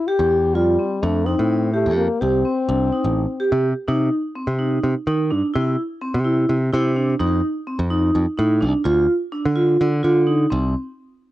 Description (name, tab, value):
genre	progressive instrumental, band music in an uneven meter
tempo	253 BPM (eighths)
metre	7/8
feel	straight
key	C dorian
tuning	A4 = 440 Hz
part	mellow French horn	melody	0.0-3.6 s	G3 to G4	-21 LUFS	left 4 dB	cassette tape
part	vibraphone with medium mallets	arpeggios	0.1-10.7 s	C4 to G4	-20 LUFS	right 1 dB	cassette tape
part	modern bright picked electric bass	bass	0.2-10.7 s	A1 to Eb3	-20 LUFS	equal	none
room	moderate small room ambience, RT60 0.5 s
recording	home recording on cassette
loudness	-17 LUFS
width	side -15 dB against mid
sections	0.0-3.9 A section; 3.9-10.5 B section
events	none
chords	0.0 C (rootless); 0.6 F7; 2.2 Cm; 5.5 C; 7.2 F7; 8.9 Dm; 10.5 N.C.